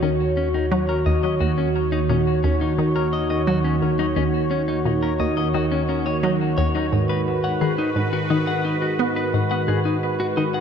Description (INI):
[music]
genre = ambient, sequencer-driven space music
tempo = 87 BPM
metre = 4/4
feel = straight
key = Eb minor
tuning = A4 = 440 Hz
[part]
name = sweeping resonant pad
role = sustained chords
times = 0.0-10.6 s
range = Eb2 to Db5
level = -21 LUFS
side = right 1 dB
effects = chorus
[part]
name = clean electric guitar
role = arpeggios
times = 0.0-10.6 s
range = Db4 to Gb5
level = -27 LUFS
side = left 4 dB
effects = auto-pan, ping-pong delay
[part]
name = resonant blip pluck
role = riff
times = 0.0-10.6 s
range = Eb2 to Cb4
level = -25 LUFS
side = equal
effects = chorus, ping-pong delay
[sound]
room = wet plate reverb, RT60 3.3 s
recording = dark, warm production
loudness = -19 LUFS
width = side -7 dB against mid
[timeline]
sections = 0.0-10.6 A section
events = none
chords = 0.0 Ebm7; 6.9 Abm7